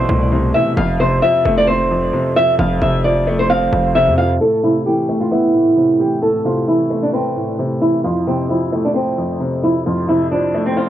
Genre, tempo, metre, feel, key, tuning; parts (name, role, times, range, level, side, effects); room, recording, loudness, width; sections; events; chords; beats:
hip hop, trap; 132 BPM; 4/4; half-time; A minor; A4 = 441 Hz
flamenco guitar; melody; 0.0-10.9 s; C4 to F5; -16 LUFS; right 1 dB; low-pass filter, cassette tape, analog delay
dark grand piano; accompaniment; 0.0-10.9 s; F2 to B4; -18 LUFS; left 1 dB; low-pass filter
distorted 808-style bass; bass; 0.0-4.4 s; F1 to F2; -20 LUFS; equal; distortion
light reverb; home recording on cassette, low-pass filter; -14 LUFS; side -12 dB against mid
0.0-4.4 A section; 4.4-10.9 B section
filter sweep 4.4-10.9
0.0 Amadd9; 0.8 F; 4.4 Amadd9; 8.0 F
0.32 | 0.77 1.23 1.68 2.13 | 2.59 3.04 3.50 3.95 | 4.41 4.86 5.32 5.77 | 6.22 6.68 7.13 7.59 | 8.04 8.50 8.95 9.41 | 9.86 10.32 10.77